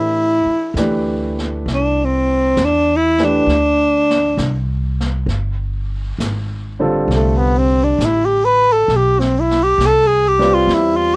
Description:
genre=jazz ballad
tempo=67 BPM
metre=4/4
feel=swing 68% on 8ths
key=C major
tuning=A4 = 440 Hz
part: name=warm tenor saxophone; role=melody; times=0.0-11.2 s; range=A3 to B4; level=-13 LUFS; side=equal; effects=cassette tape
part: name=warm grand piano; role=accompaniment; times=0.0-11.2 s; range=D3 to D5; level=-21 LUFS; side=right 1 dB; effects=none
part: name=upright bass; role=bass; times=0.0-11.2 s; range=G1 to A2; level=-20 LUFS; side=equal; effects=none
part: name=jazz brush drum kit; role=drums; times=0.8-11.2 s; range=brushed snare drum, hi-hat, snare drum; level=-27 LUFS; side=equal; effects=none
room=light reverb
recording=home recording on cassette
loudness=-13 LUFS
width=side -28 dB against mid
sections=0.0-11.2 A section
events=tenor saxophone solo 0.0-11.2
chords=0.0 Am11; 3.5 Csus2; 5.3 G5; 7.1 C5

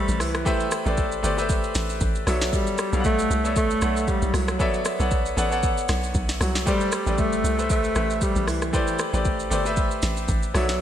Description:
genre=amapiano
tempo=116 BPM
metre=4/4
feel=swing 55% on 16ths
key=A dorian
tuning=A4 = 440 Hz
part: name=breathy alto saxophone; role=melody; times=0.0-10.8 s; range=E3 to A3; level=-26 LUFS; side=equal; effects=ping-pong delay
part: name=clear concert grand piano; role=accompaniment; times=0.0-10.8 s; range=A3 to F#5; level=-26 LUFS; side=left 1 dB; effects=none
part: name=hollow log drum bass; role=bass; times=0.1-10.8 s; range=G1 to C2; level=-26 LUFS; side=equal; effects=none
part: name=afro-pop drum kit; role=drums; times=0.1-10.8 s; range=hi-hat, kick drum, rim click, shaker, snare drum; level=-26 LUFS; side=equal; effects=none
room=moderate lush hall reverb, RT60 1.9 s, digital ambience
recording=bright 1980s-style digital production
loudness=-21 LUFS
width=side -10 dB against mid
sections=0.0-10.8 A section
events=none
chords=0.0 Am11; 2.3 Bm11; 6.7 Am11

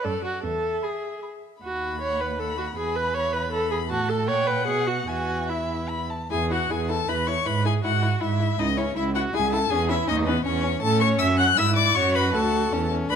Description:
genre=quick classical-period movement for string quartet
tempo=144-164 BPM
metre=3/4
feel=rubato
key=E major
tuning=A4 = 441 Hz
part: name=warm violin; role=melody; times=0.0-13.2 s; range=B4 to F#6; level=-27 LUFS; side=left 9 dB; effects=none
part: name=warm violin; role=second line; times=0.0-13.2 s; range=C#4 to B5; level=-31 LUFS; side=left 4 dB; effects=none
part: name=rich viola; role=accompaniment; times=0.0-13.2 s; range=B3 to F#5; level=-26 LUFS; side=right 1 dB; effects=none
part: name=warm cello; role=bass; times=0.1-13.2 s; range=C#2 to B2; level=-26 LUFS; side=right 3 dB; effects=none
room=moderate recital hall reverb, RT60 1.4 s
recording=none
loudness=-21 LUFS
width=side -7 dB against mid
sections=0.0-6.3 A section; 6.3-13.2 B section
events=none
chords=0.4 E; 1.6 B/D#; 2.8 E; 3.9 F#m/A; 4.3 A#m6; 4.7 B5; 5.1 E; 6.3 E69; 7.5 E/G#; 8.6 C#m; 9.7 C#m/E; 10.8 A; 12.0 F#m

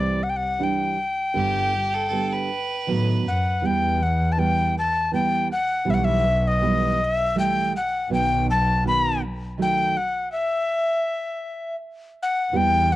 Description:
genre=klezmer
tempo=80 BPM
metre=3/4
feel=straight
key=G major, E harmonic minor from 3.6 s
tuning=A4 = 439 Hz
part: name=alto recorder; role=melody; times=0.0-13.0 s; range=D5 to B5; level=-22 LUFS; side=left 2 dB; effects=cassette tape
part: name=nylon-string guitar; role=accompaniment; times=0.0-12.9 s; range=D3 to D4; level=-25 LUFS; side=right 5 dB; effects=cassette tape
part: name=dark double bass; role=bass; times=0.0-13.0 s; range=G1 to A2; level=-26 LUFS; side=equal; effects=none
part: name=clear violin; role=second line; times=1.4-3.6 s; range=G4 to B4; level=-29 LUFS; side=right 6 dB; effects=cassette tape
room=light reverb, small room ambience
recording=home recording on cassette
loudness=-20 LUFS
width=side -15 dB against mid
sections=0.0-3.6 A section; 3.6-12.5 B section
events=speeding up 0.0-13.0; stop 10.3-12.5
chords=0.0 C; 1.3 G; 2.9 B7; 3.6 Em; 8.1 B; 10.3 N.C.

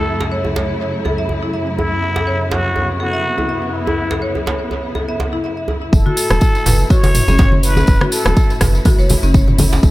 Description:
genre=afro house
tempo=123 BPM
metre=4/4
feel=swing 55% on 16ths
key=F# minor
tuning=A4 = 435 Hz
part: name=trumpet with plunger mute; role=melody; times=0.0-9.9 s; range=E4 to C#5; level=-22 LUFS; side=equal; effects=tape echo
part: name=dark symphonic string section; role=sustained chords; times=0.0-9.9 s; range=F#2 to E4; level=-23 LUFS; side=equal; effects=sidechain pumping
part: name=marimba with medium hard mallets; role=arpeggios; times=0.0-9.8 s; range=C#4 to E5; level=-23 LUFS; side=left 2 dB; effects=sidechain pumping, tape echo
part: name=djembe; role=percussion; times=0.2-9.8 s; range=none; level=-24 LUFS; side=right 1 dB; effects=dub echo
part: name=round analog bass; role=bass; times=5.9-9.9 s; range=E1 to F#1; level=-16 LUFS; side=equal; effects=sidechain pumping
part: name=electronic kick drum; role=drums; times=5.9-9.9 s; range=none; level=-12 LUFS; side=equal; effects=none
part: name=tambourine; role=percussion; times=5.9-9.9 s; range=none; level=-28 LUFS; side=left 2 dB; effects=dub echo
part: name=congas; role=percussion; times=6.1-9.7 s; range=none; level=-20 LUFS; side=left 2 dB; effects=none
part: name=house drum kit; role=drums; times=6.2-9.7 s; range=hi-hat, rim click, toms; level=-20 LUFS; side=right 1 dB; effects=none
room=light reverb, studio reverb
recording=echo-heavy mix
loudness=-13 LUFS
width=side -17 dB against mid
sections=0.0-5.9 A section; 5.9-9.9 B section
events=drop 5.9-9.9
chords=0.0 A/F#; 5.9 F#m7

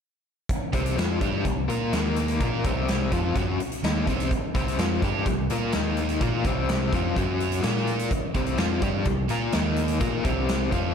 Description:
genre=classic rock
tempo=126 BPM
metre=4/4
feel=straight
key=unclear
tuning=A4 = 439 Hz
part: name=big rock drum kit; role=drums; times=0.5-10.8 s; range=hi-hat, kick drum, snare drum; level=-27 LUFS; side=equal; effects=none
part: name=biting overdriven guitar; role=riff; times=0.7-10.9 s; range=C3 to Bb4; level=-28 LUFS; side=left 7 dB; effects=tremolo, slapback echo
part: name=sludgy distorted guitar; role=riff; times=0.7-10.9 s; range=C3 to Bb4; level=-30 LUFS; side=right 10 dB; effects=overdrive
part: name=hollow-body short-scale fingered electric bass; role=bass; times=0.7-10.9 s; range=C2 to Bb2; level=-30 LUFS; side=right 1 dB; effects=none
room=moderate scoring stage reverb, RT60 1.8 s, small room ambience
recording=big arena sound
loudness=-23 LUFS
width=side -7 dB against mid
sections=0.5-10.9 A section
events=none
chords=0.5 C5; 1.9 Eb5; 2.4 C5; 5.7 Eb5; 6.2 C5; 7.2 F#5; 7.6 Bb5; 8.4 C5; 9.5 Eb5; 10.0 C5

